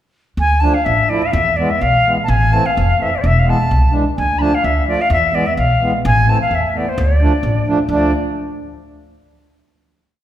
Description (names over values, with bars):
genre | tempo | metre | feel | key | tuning
klezmer | 128 BPM | 2/4 | straight | D dorian sharp4 | A4 = 440 Hz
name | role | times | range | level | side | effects
silver concert flute | melody | 0.4-8.1 s | C5 to B5 | -17 LUFS | left 1 dB | none
upright bass | bass | 0.4-8.1 s | E1 to E2 | -16 LUFS | equal | none
mellow accordion | accompaniment | 0.6-8.1 s | E3 to F4 | -20 LUFS | right 1 dB | none
room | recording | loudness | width
wet recital hall reverb, RT60 1.7 s | recorded in a church or concert hall | -13 LUFS | side -11 dB against mid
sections
0.4-7.9 A section; 7.9-8.8 final chord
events
none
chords
0.4 Dm; 1.3 E; 2.3 Am; 3.2 E; 4.2 Dm; 5.1 E; 6.0 Am; 7.0 Dm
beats
| 0.39 0.87 | 1.34 1.82 | 2.29 2.76 | 3.23 3.70 | 4.17 4.64 | 5.11 5.58 | 6.04 6.51 | 6.97 7.44 | 7.90